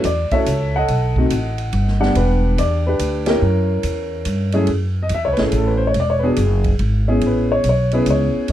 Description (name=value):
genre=jazz piano trio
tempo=142 BPM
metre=3/4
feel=swing 65% on 8ths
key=F# minor from 4.7 s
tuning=A4 = 441 Hz
part: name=warm upright piano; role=melody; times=0.0-8.5 s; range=F#2 to F#5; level=-18 LUFS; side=left 1 dB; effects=none
part: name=upright bass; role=bass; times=0.0-8.5 s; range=E1 to G2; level=-19 LUFS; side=equal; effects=none
part: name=swinging big-band drum kit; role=drums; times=0.0-8.5 s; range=hi-hat, kick drum, ride cymbal, snare drum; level=-27 LUFS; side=right 2 dB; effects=none
room=little or no reverb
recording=dark, warm production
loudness=-15 LUFS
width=side -12 dB against mid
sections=0.0-4.7 A section; 4.7-8.5 B section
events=band accent 3.2; upright piano solo 4.7-8.5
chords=0.0 F#m7; 0.9 B7; 2.2 Em9; 3.4 F#7b9; 4.7 F#m7; 6.0 E; 7.2 Amaj9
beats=0.05 0.47 | 0.89 1.31 1.74 | 2.16 2.58 3.00 | 3.42 3.85 4.27 | 4.69 5.11 5.54 | 5.96 6.38 6.80 | 7.22 7.65 8.07 | 8.49